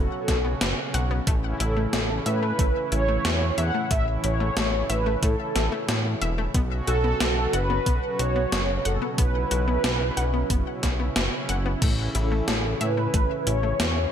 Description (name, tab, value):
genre	synthwave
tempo	91 BPM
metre	4/4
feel	straight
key	unclear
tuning	A4 = 440 Hz
part	mellow synth brass	melody	0.0-14.1 s	A4 to F#5	-28 LUFS	right 1 dB	chorus, digital delay
part	brassy analog pad	sustained chords	0.0-14.1 s	A2 to F#4	-32 LUFS	right 1 dB	chorus, tremolo, sidechain pumping
part	fat analog bass	bass	0.0-14.1 s	E1 to A2	-26 LUFS	equal	none
part	analog pluck	arpeggios	0.3-13.9 s	A3 to F#5	-33 LUFS	left 5 dB	chorus, cassette tape, ping-pong delay
part	electronic kick drum	drums	0.3-13.3 s	none	-24 LUFS	equal	none
part	gated 80s digital drum machine	drums	0.3-13.9 s	crash cymbal, hi-hat, snare drum	-28 LUFS	equal	gated reverb, gated reverb snare
room	light reverb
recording	none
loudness	-22 LUFS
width	side -9 dB against mid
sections	0.0-14.1 A section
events	none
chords	0.0 Bsus2; 1.3 A; 6.5 Bsus2; 11.8 A